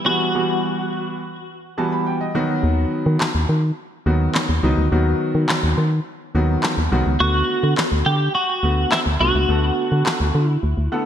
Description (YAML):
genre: dance-pop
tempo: 105 BPM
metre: 4/4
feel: straight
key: unclear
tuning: A4 = 440 Hz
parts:
  - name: twelve-string electric guitar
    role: melody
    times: 0.1-1.2, 7.2-11.1 s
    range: E4 to G4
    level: -21 LUFS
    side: equal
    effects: analog chorus, ping-pong delay
  - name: clear concert grand piano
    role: accompaniment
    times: 0.1-11.1 s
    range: D3 to B5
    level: -22 LUFS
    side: equal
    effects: none
  - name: organ-like FM bass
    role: bass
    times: 2.6-10.9 s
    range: C2 to D#3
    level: -18 LUFS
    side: equal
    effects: none
  - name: electronic handclaps and snare drum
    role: drums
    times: 3.2-10.2 s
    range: none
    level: -23 LUFS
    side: equal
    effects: gated reverb
room: moderate lush hall reverb, RT60 1.7 s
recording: bright 1980s-style digital production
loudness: -17 LUFS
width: side -9 dB against mid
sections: 0.0-11.1 A section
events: grand piano fill 1.5-2.6, 10.6-11.1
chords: 0.0 Emadd9; 2.3 B; 7.2 D6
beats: | 0.35 0.92 1.49 2.06 | 2.63 3.20 3.78 4.35 | 4.92 5.49 6.06 6.63 | 7.20 7.78 8.35 8.92 | 9.49 10.06 10.63